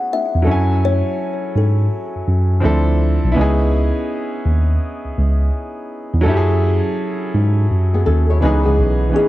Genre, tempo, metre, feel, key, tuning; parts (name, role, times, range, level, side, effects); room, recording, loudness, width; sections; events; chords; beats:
hip hop; 83 BPM; 4/4; swing 66% on 16ths; C# minor; A4 = 438 Hz
kalimba; melody; 0.0-3.0, 9.2-9.3 s; G#4 to E5; -22 LUFS; left 4 dB; tape echo
clear upright piano; accompaniment; 0.0-9.3 s; E3 to G#5; -21 LUFS; right 1 dB; cassette tape
mellow tine electric piano; bass; 0.4-9.1 s; B1 to G#2; -15 LUFS; equal; medium stereo tremolo
flamenco guitar; second line; 7.9-9.1 s; B3 to C#5; -21 LUFS; left 3 dB; tape echo
light reverb, small room ambience; dark, warm production; -15 LUFS; side -16 dB against mid
0.0-9.1 A section
0.5 F#m9; 2.6 Dm7; 3.4 C#m7; 6.3 F#m9; 8.4 C#m9
| 0.47 1.19 1.91 2.64 | 3.36 4.08 4.81 5.53 | 6.25 6.97 7.70 8.42 | 9.14